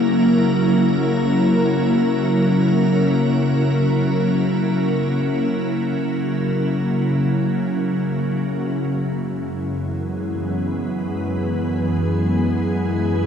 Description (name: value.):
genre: ambient.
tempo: free time.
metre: none.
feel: none.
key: F# mixolydian.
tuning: A4 = 440 Hz.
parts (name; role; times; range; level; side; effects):
soft additive organ-like pad; solo; 0.0-13.3 s; F#2 to B4; -17 LUFS; equal; ensemble chorus, built-in reverb.
room: wet cathedral reverb, RT60 6.7 s.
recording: dark, warm production.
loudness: -17 LUFS.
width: side -7 dB against mid.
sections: 0.0-8.9 A section; 8.9-13.3 B section.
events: none.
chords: 0.0 F#7; 8.9 E/F#.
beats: free time.